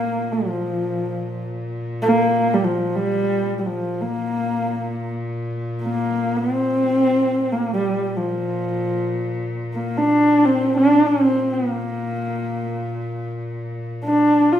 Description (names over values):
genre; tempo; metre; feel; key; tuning
mongolian traditional, Mongolian folk; free time; none; none; Bb gong mode; A4 = 441 Hz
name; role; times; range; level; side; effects
dark horsehead fiddle; melody; 0.0-14.6 s; F3 to F4; -18 LUFS; equal; none
warm cello; drone; 0.0-14.6 s; Bb2; -29 LUFS; equal; none
room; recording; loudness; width
wet large studio reverb, RT60 0.8 s; band playing live in one room; -19 LUFS; side -10 dB against mid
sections
0.0-14.6 A section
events
none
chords
none